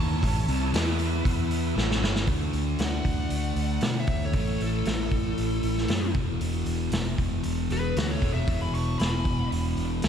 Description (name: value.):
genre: blues rock power trio and southern rock.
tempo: 116 BPM.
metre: 4/4.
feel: straight.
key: unclear.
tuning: A4 = 442 Hz.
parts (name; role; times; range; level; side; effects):
lead guitar through a small cranked amp; second line; 0.0-9.5 s; B3 to A5; -38 LUFS; right 3 dB; overdrive, slapback echo.
overdriven tonewheel organ; sustained chords; 0.0-2.3 s; B3 to E5; -39 LUFS; right 4 dB; slow rotary speaker.
fuzz guitar; riff; 0.0-10.1 s; E2 to E4; -29 LUFS; left 1 dB; distortion, slapback echo.
vintage muted fingered electric bass; bass; 0.0-10.1 s; E1 to B2; -29 LUFS; equal; none.
vintage drum kit; drums; 0.2-10.1 s; hi-hat, kick drum, snare drum; -29 LUFS; equal; none.
smooth overdriven lead guitar; melody; 2.8-9.5 s; F#4 to C#6; -35 LUFS; left 3 dB; slapback echo.
room: light reverb, small room ambience.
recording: none.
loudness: -24 LUFS.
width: side -8 dB against mid.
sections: 0.0-2.3 A section; 2.3-10.1 B section.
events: drum fill 1.8-2.3.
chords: 0.0 A; 0.7 E5; 1.8 A; 2.3 D; 4.4 A5; 6.2 E.